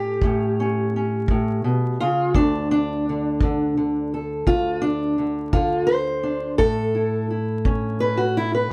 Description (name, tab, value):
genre	acoustic country blues, solo or duo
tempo	56 BPM (dotted quarters)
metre	12/8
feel	straight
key	unclear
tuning	A4 = 440 Hz
part	fingerpicked steel-string acoustic guitar	melody	0.0-8.7 s	D2 to C5	-22 LUFS	equal	none
part	kick drum	drums	0.2-7.8 s	none	-24 LUFS	equal	none
room	light reverb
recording	dark, warm production, vinyl crackle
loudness	-22 LUFS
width	mono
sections	0.0-8.7 A section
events	steel-string acoustic guitar solo 0.0-8.7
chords	0.0 A; 2.3 D5; 6.6 A